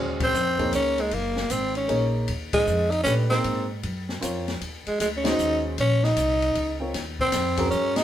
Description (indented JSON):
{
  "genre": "modal jazz",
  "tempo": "154 BPM",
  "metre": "3/4",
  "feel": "swing 65% on 8ths",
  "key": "Eb dorian",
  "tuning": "A4 = 440 Hz",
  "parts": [
    { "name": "warm grand piano", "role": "accompaniment", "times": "0.0-8.0 s", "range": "G#3 to Db5", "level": "-29 LUFS", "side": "right 1 dB", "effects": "none" },
    { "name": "upright bass", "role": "bass", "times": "0.0-8.0 s", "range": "Gb1 to Bb2", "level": "-28 LUFS", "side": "equal", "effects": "none" },
    { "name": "growling tenor saxophone", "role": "melody", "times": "0.2-8.0 s", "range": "Ab3 to Eb4", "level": "-23 LUFS", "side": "equal", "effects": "none" },
    { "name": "open jazz drum kit", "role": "drums", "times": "0.2-8.0 s", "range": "hi-hat, kick drum, ride cymbal, snare drum", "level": "-31 LUFS", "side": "left 2 dB", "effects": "none" }
  ],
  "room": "moderate studio reverb, RT60 0.7 s",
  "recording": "band playing live in one room",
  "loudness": "-22 LUFS",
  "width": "side -11 dB against mid",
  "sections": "0.0-8.0 A section",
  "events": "band accent 0.1, 2.5, 5.2",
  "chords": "0.0 Ebm9; 2.3 Fm/Eb; 4.6 Ebm7; 6.9 Fm/Eb"
}